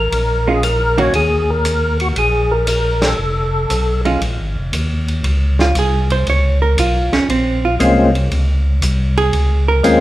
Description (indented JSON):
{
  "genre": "soul jazz organ trio",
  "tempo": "117 BPM",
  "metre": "4/4",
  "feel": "swing 68% on 8ths",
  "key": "Bb minor",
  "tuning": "A4 = 440 Hz",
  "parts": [
    { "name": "percussive tonewheel organ", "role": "melody", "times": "0.0-4.0, 7.8-10.0 s", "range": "Ab3 to Db5", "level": "-16 LUFS", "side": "left 1 dB", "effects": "slow rotary speaker, chorus vibrato" },
    { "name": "tonewheel organ", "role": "bass", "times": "0.0-10.0 s", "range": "F1 to Eb2", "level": "-16 LUFS", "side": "equal", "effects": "slow rotary speaker" },
    { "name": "warm soul drum kit", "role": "drums", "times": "0.1-10.0 s", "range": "hi-hat, ride cymbal, snare drum", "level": "-24 LUFS", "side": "equal", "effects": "none" },
    { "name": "hollow-body jazz guitar", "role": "accompaniment", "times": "0.5-10.0 s", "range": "Eb3 to Db5", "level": "-18 LUFS", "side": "right 3 dB", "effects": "none" }
  ],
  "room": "moderate recital hall reverb, RT60 1.5 s",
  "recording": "recorded in a church or concert hall",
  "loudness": "-13 LUFS",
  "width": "side -15 dB against mid",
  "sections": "0.0-4.2 A section; 4.2-10.0 B section",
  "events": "band accent 2.9; hollow-body jazz guitar solo 4.2-10.0",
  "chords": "0.1 Bbm7; 1.1 Eb5; 2.2 Absus2/Bb; 3.2 F; 4.2 Bbm7",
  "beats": "| 0.11 0.63 1.14 1.65 | 2.17 2.68 3.19 3.70 | 4.21 4.73 5.24 5.75 | 6.26 6.77 7.28 7.79 | 8.31 8.82 9.33 9.84"
}